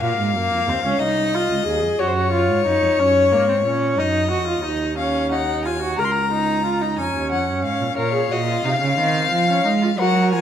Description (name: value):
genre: classical, baroque-style fugue for string quartet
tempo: 60 BPM (dotted quarters)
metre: 12/8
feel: straight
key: unclear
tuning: A4 = 440 Hz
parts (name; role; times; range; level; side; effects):
- rich violin; melody; 0.0-10.4 s; C5 to C6; -21 LUFS; left 7 dB; none
- rich viola; accompaniment; 0.0-10.4 s; Bb3 to Bb4; -22 LUFS; right 2 dB; none
- warm cello; bass; 0.0-10.4 s; C2 to Ab3; -23 LUFS; right 4 dB; none
- warm violin; second line; 8.0-10.4 s; Bb4 to F5; -24 LUFS; left 3 dB; none
room: wet recital hall reverb, RT60 1.7 s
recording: none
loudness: -17 LUFS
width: side -9 dB against mid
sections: 0.0-8.0 A section; 8.0-10.4 B section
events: none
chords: 0.0 Bbm; 2.0 Gb; 4.0 Ebm; 6.0 Bbm/Db; 8.0 Bbm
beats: | 0.02 1.01 2.00 2.99 | 3.99 4.99 5.99 6.98 | 7.98 8.99 9.99